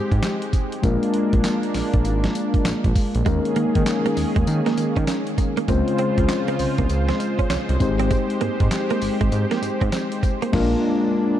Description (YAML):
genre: R&B, new jack swing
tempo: 99 BPM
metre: 4/4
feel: swing 63% on 16ths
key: Bb dorian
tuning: A4 = 440 Hz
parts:
  - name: mellow tine electric piano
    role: accompaniment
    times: 0.0-11.4 s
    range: Ab3 to C5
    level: -23 LUFS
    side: left 4 dB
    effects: none
  - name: warm analog pad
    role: sustained chords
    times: 0.0-11.4 s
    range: Db3 to C5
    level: -26 LUFS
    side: right 2 dB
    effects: chorus
  - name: smooth synth bass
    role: bass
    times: 0.1-10.8 s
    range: Ab1 to Eb3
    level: -23 LUFS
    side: right 1 dB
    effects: none
  - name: dusty soul sampler-style drum kit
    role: drums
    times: 0.1-10.8 s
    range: crash cymbal, handclaps, hi-hat, kick drum, snare drum, tambourine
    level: -24 LUFS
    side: equal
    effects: none
  - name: direct-recorded clean electric guitar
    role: riff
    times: 3.3-10.5 s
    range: Ab3 to Db4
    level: -28 LUFS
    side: right 6 dB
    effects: wide subtle chorus
room: light reverb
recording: dark, warm production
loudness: -18 LUFS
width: side -11 dB against mid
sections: 0.0-11.4 A section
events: band accent 10.5-11.4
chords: 0.0 Abmaj7; 0.8 Bb7; 3.3 Eb7sus4; 5.7 Dbmaj7; 7.8 Abmaj7; 10.5 Bb7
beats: 0.23 | 0.83 1.44 2.05 2.65 | 3.26 3.87 4.47 5.08 | 5.68 6.29 6.89 7.50 | 8.11 8.71 9.32 9.93 | 10.53 11.14